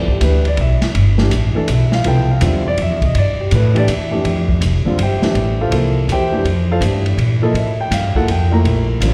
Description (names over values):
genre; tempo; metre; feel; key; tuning
modal jazz; 163 BPM; 3/4; swing 65% on 8ths; C major, F major from 4.2 s; A4 = 438 Hz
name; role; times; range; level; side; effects
warm concert grand piano; accompaniment; 0.0-9.1 s; F2 to Bb5; -21 LUFS; equal; slapback echo
upright bass; bass; 0.0-9.1 s; F1 to Bb2; -18 LUFS; equal; none
open jazz drum kit; drums; 0.1-9.1 s; hi-hat, kick drum, ride cymbal, snare drum; -25 LUFS; equal; none
room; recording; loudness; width
light reverb, studio ambience; live gig heard through the venue's PA, recital hall reverb; -16 LUFS; mono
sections
0.0-4.2 A section; 4.2-9.1 A section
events
none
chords
0.0 Cmaj9; 4.2 Fmaj9